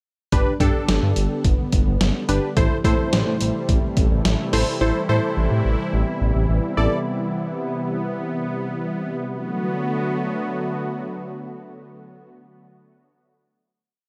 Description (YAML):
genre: synth-pop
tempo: 107 BPM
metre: 4/4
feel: straight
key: D major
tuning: A4 = 439 Hz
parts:
  - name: warm analog keys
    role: accompaniment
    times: 0.3-7.0 s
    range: D4 to D5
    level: -26 LUFS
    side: equal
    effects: chorus
  - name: sweeping resonant pad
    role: sustained chords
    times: 0.3-12.3 s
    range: C3 to F#4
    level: -28 LUFS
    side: equal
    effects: chorus
  - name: smooth synth bass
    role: bass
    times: 0.3-6.9 s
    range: G1 to A2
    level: -23 LUFS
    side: equal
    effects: none
  - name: trip hop sampler-style drum kit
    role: drums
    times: 0.3-4.7 s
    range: hi-hat, kick drum, snare drum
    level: -23 LUFS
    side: equal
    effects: none
room: little or no reverb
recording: none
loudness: -22 LUFS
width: mono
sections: 0.3-9.3 pre-chorus; 9.3-11.5 final chord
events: none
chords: 0.3 G; 2.6 Am7; 9.3 D6